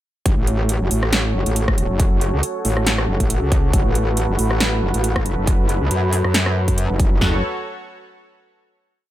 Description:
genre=heavy wobble dubstep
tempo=138 BPM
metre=4/4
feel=swing 55% on 16ths, half-time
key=F# minor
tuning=A4 = 440 Hz
part: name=supersaw pad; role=sustained chords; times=0.3-7.4 s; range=F#4 to C#5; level=-25 LUFS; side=right 1 dB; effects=sidechain pumping, low-pass filter
part: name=metallic wobble bass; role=bass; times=0.3-7.4 s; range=F#1 to F#2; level=-19 LUFS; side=equal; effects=distortion, chorus, overdrive
part: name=big-room dance drum kit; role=drums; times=0.3-7.3 s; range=kick drum, snare drum, toms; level=-18 LUFS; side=equal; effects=studio reverb
part: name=big-room dance drum kit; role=drums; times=0.3-7.1 s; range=hi-hat, rim click, snare drum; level=-22 LUFS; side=right 1 dB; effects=studio reverb
room=little or no reverb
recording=none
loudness=-16 LUFS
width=side -13 dB against mid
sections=0.3-7.2 drop; 7.2-9.0 final chord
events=drop 0.3-7.2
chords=0.3 F#m

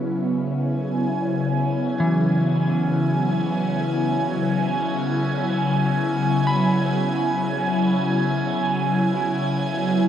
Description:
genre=ambient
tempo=free time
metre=none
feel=none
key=unclear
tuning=A4 = 443 Hz
part: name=airy breathy pad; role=sustained chords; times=0.0-10.1 s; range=C#3 to G#5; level=-20 LUFS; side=equal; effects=chorus, phaser, shimmer reverb
part: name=clean electric guitar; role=arpeggios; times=0.0-10.1 s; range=E3 to B5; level=-28 LUFS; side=equal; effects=spring reverb, diffuse ambient delay
room=wet huge ambient reverb, RT60 7.7 s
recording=none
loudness=-19 LUFS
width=side -10 dB against mid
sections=0.0-10.1 A section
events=fade-out on clean electric guitar 0.0-10.1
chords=0.0 E69/C#

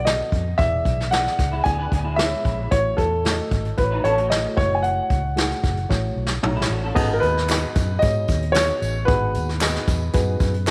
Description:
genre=uptempo 1960s-style soul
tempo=113 BPM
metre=4/4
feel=straight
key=unclear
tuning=A4 = 440 Hz
part: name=warm grand piano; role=melody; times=0.0-10.7 s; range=A4 to G#5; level=-25 LUFS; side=equal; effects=none
part: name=vintage muted fingered electric bass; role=bass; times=0.0-10.7 s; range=E1 to G#2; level=-27 LUFS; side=equal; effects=none
part: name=barky reed electric piano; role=accompaniment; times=0.1-10.7 s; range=G#2 to F#5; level=-31 LUFS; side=equal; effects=overdrive, spring reverb
part: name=vintage brush drum kit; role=drums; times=0.1-10.7 s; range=crash cymbal, hi-hat, kick drum, snare drum, toms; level=-26 LUFS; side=equal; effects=none
part: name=electric guitar through a small old amp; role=riff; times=1.5-7.1 s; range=F#3 to B4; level=-32 LUFS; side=equal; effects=ensemble chorus
part: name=tambourine and handclaps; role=percussion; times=7.0-10.7 s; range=none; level=-36 LUFS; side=equal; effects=none
room=light reverb, studio reverb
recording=none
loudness=-21 LUFS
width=mono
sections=0.0-7.0 A section; 7.0-10.7 B section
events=drum fill 5.9-7.0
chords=0.0 B7; 0.6 E7; 2.7 A6; 4.6 F#m7; 7.0 G#m7

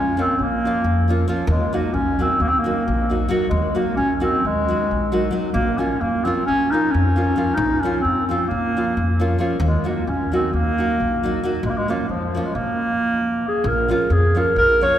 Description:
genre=balkan folk, Balkan wedding band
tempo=266 BPM (eighths)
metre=9/8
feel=straight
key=Bb minor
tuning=A4 = 440 Hz
part: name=mellow clarinet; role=melody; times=0.0-15.0 s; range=F3 to Db5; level=-20 LUFS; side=equal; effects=none
part: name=upright bass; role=bass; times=0.0-14.8 s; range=Bb1 to F2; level=-23 LUFS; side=equal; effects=none
part: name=nylon-string guitar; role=accompaniment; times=0.2-15.0 s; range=F3 to Gb4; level=-24 LUFS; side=equal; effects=none
room=wet cathedral reverb, RT60 4.8 s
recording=recorded in a church or concert hall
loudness=-18 LUFS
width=side -11 dB against mid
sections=0.0-13.6 A section; 13.6-15.0 B section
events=none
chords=0.0 Bbm; 1.5 Ebm; 5.5 Bbm; 9.6 Ebm; 11.6 Bbm

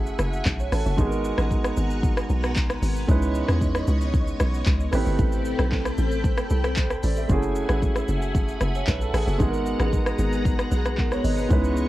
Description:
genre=amapiano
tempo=114 BPM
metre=4/4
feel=straight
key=unclear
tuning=A4 = 440 Hz
part: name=warm grand piano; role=accompaniment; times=0.0-11.9 s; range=G#3 to E5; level=-28 LUFS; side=right 3 dB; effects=none
part: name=string machine, full ensemble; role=sustained chords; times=0.0-11.9 s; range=B3 to C#6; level=-30 LUFS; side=left 1 dB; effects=ensemble chorus, sidechain pumping
part: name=hollow log drum bass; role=bass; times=0.0-11.9 s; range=F#1 to E2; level=-24 LUFS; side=equal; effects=none
part: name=deep house drum kit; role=drums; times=0.1-11.9 s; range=handclaps, hi-hat, kick drum, rim click, shaker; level=-25 LUFS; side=equal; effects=none
room=light reverb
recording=worn, warbling old tape, cassette tape, warbly pitch drift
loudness=-21 LUFS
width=side -16 dB against mid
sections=0.0-11.9 A section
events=none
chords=0.0 F#m9; 1.0 G#m9; 3.1 C#m9; 4.9 Am9; 7.3 F#m9; 9.4 G#m9

